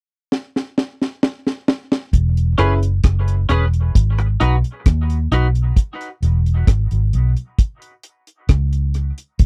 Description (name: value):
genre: dub reggae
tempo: 66 BPM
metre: 4/4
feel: straight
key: E major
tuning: A4 = 440 Hz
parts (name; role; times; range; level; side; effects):
- deep reggae drum kit; drums; 0.3-9.5 s; hi-hat, kick drum, rim click, snare drum; -17 LUFS; equal; none
- vintage muted fingered electric bass; bass; 2.1-9.5 s; E1 to D#2; -18 LUFS; equal; none
- clean electric guitar; accompaniment; 2.6-5.5 s; C#4 to B4; -26 LUFS; equal; lush chorus, dub echo
- warm upright piano; stabs; 2.6-2.8 s; C#4 to B4; -26 LUFS; equal; dub echo
room: little or no reverb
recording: dry, close 1970s-style studio recording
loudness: -18 LUFS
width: mono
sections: 0.0-2.1 A section; 2.1-9.5 B section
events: drum fill 0.3-2.1; break 5.8-9.5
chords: 0.0 N.C.; 2.1 E6; 3.9 G#m7; 5.8 E; 7.6 N.C.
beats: 0.31 1.22 | 2.13 3.04 3.95 4.85 | 5.76 6.67 7.58 8.49 | 9.39